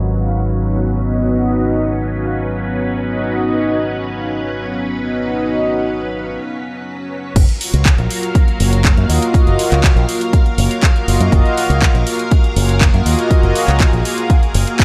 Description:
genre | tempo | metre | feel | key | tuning
nu-disco, nu disco | 121 BPM | 4/4 | straight | F# major | A4 = 440 Hz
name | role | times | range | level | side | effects
string machine, full ensemble | sustained chords | 0.0-14.8 s | F#3 to E#5 | -27 LUFS | equal | ensemble chorus, sidechain pumping
fingered electric bass with an envelope filter | bass | 0.0-14.6 s | F#1 to F#2 | -20 LUFS | equal | none
warm analog pad | accompaniment | 0.2-14.8 s | A#3 to E#5 | -21 LUFS | equal | chorus, sidechain pumping, dub echo
electronic kick drum | drums | 7.4-14.8 s | none | -14 LUFS | equal | overdrive, studio reverb
house drum kit | drums | 7.4-14.8 s | crash cymbal, handclaps, hi-hat | -23 LUFS | equal | overdrive, studio reverb
room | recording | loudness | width
light reverb, digital ambience | low-pass filter | -15 LUFS | mono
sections
0.0-7.4 A section; 7.4-14.8 B section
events
filter sweep on string machine 0.0-7.4; filter sweep 0.0-7.4; break 6.4-7.4; drop 7.4-14.8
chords
0.0 C#9sus4/G#; 7.4 F#maj7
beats
0.41 0.91 | 1.41 1.90 2.40 2.89 | 3.39 3.88 4.38 4.88 | 5.37 5.87 6.36 6.86 | 7.36 7.85 8.35 8.84 | 9.34 9.84 10.33 10.83 | 11.32 11.82 12.31 12.81 | 13.31 13.80 14.30 14.79

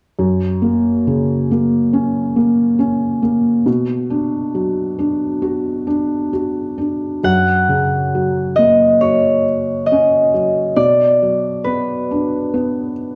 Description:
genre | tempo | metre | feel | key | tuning
children's music, lullaby | 68 BPM | 4/4 | rubato | unclear | A4 = 443 Hz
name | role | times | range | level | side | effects
felt-muted upright piano | accompaniment | 0.2-13.2 s | F#2 to F#4 | -19 LUFS | equal | none
concert harp | melody | 7.2-13.2 s | B4 to F#5 | -17 LUFS | equal | none
room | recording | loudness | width
wet recital hall reverb, RT60 1.6 s | dark, warm production | -16 LUFS | mono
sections
0.2-7.2 A section; 7.2-13.2 B section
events
none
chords
0.2 F#; 3.7 Bm; 7.2 F#; 10.8 Bm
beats
| 0.18 1.07 1.94 2.81 | 3.67 4.55 5.43 6.33 | 7.24 8.13 9.02 9.90 | 10.78 11.66 12.53

